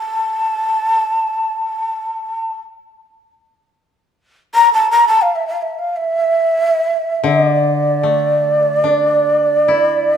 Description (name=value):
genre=japanese traditional, Japanese chamber music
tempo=free time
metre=none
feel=none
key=D hirajoshi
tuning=A4 = 440 Hz
part: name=breathy mellow shakuhachi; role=melody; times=0.0-10.2 s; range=D5 to Bb5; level=-14 LUFS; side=equal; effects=none
part: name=koto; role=accompaniment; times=7.2-10.2 s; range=D3 to E4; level=-19 LUFS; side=left 5 dB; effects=none
room=moderate recital hall reverb, RT60 1.9 s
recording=minimal, uncompressed stereo recording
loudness=-13 LUFS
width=side -8 dB against mid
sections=0.0-10.2 A section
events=slowing down 2.0-10.2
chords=none